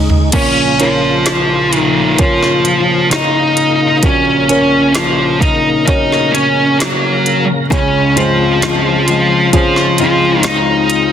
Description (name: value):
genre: pop ballad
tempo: 65 BPM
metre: 4/4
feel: straight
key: Bb minor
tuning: A4 = 441 Hz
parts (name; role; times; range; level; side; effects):
- felt-muted upright piano; accompaniment; 0.0-11.1 s; Ab1 to Eb5; -19 LUFS; right 2 dB; none
- tonewheel organ; sustained chords; 0.0-11.1 s; Db3 to Bb4; -18 LUFS; right 1 dB; overdrive, chorus vibrato, slow rotary speaker
- fingerpicked steel-string acoustic guitar; arpeggios; 0.0-0.9, 7.7-11.1 s; Ab2 to Ab4; -19 LUFS; left 8 dB; none
- smooth R&B drum kit; drums; 0.1-11.1 s; crash cymbal, hi-hat, kick drum, snare drum, toms; -16 LUFS; equal; none
- high-gain lead guitar; melody; 0.3-11.1 s; F3 to Eb5; -12 LUFS; left 1 dB; distortion
room: light reverb, digital ambience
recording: dense, heavily limited modern master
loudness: -10 LUFS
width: side -9 dB against mid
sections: 0.3-11.1 A section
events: drum fill 0.0-0.3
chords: 0.3 Bbm; 4.0 Gb/Bb; 7.7 Dbmaj7